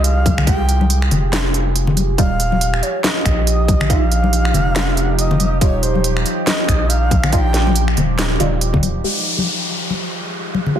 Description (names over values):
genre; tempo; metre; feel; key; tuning
deep dubstep; 140 BPM; 4/4; swing 58% on 16ths, half-time; unclear; A4 = 440 Hz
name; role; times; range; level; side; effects
reedy long shakuhachi; melody; 0.0-8.0 s; C5 to Ab5; -24 LUFS; right 1 dB; dub echo
deep dark ambient pad; sustained chords; 0.0-10.8 s; F3 to Ab4; -24 LUFS; right 2 dB; chorus, built-in reverb
soft dub sub bass; bass; 0.0-9.0 s; Eb1 to C2; -17 LUFS; equal; none
garage drum kit; drums; 0.0-8.9 s; finger snaps, hi-hat, snare drum; -21 LUFS; right 1 dB; soft clipping on snare
electronic kick drum; drums; 0.3-8.8 s; none; -18 LUFS; equal; none
congas; percussion; 0.3-10.7 s; none; -21 LUFS; left 4 dB; none
filtered dub chord stab; stabs; 0.5-10.8 s; G3 to G4; -26 LUFS; right 2 dB; phaser, analog chorus, dub echo
downlifter; sound effects; 9.0-10.8 s; none; -21 LUFS; left 1 dB; none
room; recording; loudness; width
light reverb, digital ambience; dense, heavily limited modern master; -14 LUFS; side -10 dB against mid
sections
0.0-9.0 A section; 9.0-10.8 B section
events
drop 0.0-9.0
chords
0.0 Fmadd9; 2.2 Ebadd9; 9.0 Fmadd9